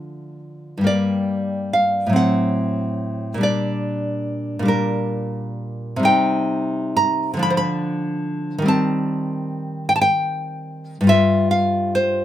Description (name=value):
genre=romantic piece for solo classical guitar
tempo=41-51 BPM (dotted quarters)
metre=6/8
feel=rubato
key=unclear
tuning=A4 = 441 Hz
part: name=nylon-string guitar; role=solo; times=0.0-12.2 s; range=G2 to B5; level=-18 LUFS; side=equal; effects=none
room=moderate small room reverb, RT60 0.5 s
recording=minimal, uncompressed stereo recording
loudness=-18 LUFS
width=side -12 dB against mid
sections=0.9-12.2 A section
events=none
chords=0.0 Dm; 0.9 Gm; 2.1 F#dim/A; 3.4 Gm/Bb; 6.1 Cm; 7.4 Bdim/D; 8.7 Cm/Eb; 11.1 G7(no3)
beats=| 0.87 2.15 | 3.42 4.68 | 6.06 7.45 | 8.70 9.89 | 11.09